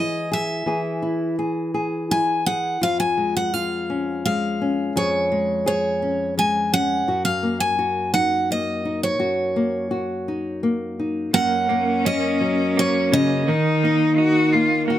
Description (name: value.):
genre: acoustic folk-pop ballad.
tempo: 84 BPM.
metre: 3/4.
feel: straight.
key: unclear.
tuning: A4 = 441 Hz.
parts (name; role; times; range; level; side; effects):
picked steel-string acoustic guitar; melody; 0.0-15.0 s; Db5 to G#5; -22 LUFS; right 1 dB; none.
nylon-string guitar; accompaniment; 0.0-15.0 s; F2 to G#4; -23 LUFS; left 2 dB; none.
bright cello; second line; 11.3-15.0 s; Db4 to Gb4; -23 LUFS; left 3 dB; none.
direct-recorded clean electric guitar; arpeggios; 11.3-15.0 s; Eb3 to Eb4; -24 LUFS; right 6 dB; tremolo.
room: light reverb.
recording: close, detailed microphones.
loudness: -19 LUFS.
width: side -12 dB against mid.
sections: 0.0-11.3 A section; 11.3-15.0 B section.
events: none.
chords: 0.0 E; 2.8 Db/F; 7.1 Gb6; 11.3 Gb; 13.5 Ebm.